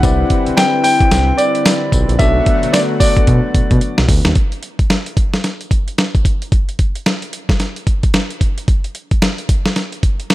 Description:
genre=R&B, new jack swing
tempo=111 BPM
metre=4/4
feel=swing 61% on 16ths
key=unclear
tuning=A4 = 441 Hz
part: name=warm grand piano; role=melody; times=0.0-4.0 s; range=D5 to G5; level=-17 LUFS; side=left 1 dB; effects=none
part: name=barky tine electric piano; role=accompaniment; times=0.0-4.4 s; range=B3 to D5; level=-21 LUFS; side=left 6 dB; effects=none
part: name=brassy analog pad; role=sustained chords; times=0.0-4.3 s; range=D3 to B4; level=-21 LUFS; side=right 2 dB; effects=lush chorus
part: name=smooth synth bass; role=bass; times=0.0-4.3 s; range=A#1 to B2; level=-15 LUFS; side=equal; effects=none
part: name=dusty soul sampler-style drum kit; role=drums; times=0.0-10.3 s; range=hi-hat, kick drum, snare drum, tambourine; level=-14 LUFS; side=equal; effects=none
room=little or no reverb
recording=none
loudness=-12 LUFS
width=side -16 dB against mid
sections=0.0-4.4 A section; 4.4-10.3 B section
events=drum fill 3.3-4.4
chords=0.0 Cmaj9; 2.2 Bm7; 4.4 N.C.

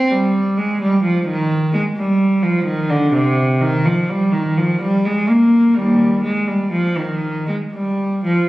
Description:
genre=classical, baroque-style suite movement for unaccompanied cello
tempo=63 BPM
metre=3/4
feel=rubato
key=unclear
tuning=A4 = 440 Hz
part: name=dark cello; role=solo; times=0.0-8.5 s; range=Eb2 to Bb3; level=-14 LUFS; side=equal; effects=none
room=wet recital hall reverb, RT60 1.4 s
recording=recorded on a phone in the room, studio ambience, compression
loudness=-15 LUFS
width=side -17 dB against mid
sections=0.0-8.5 A section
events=none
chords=none

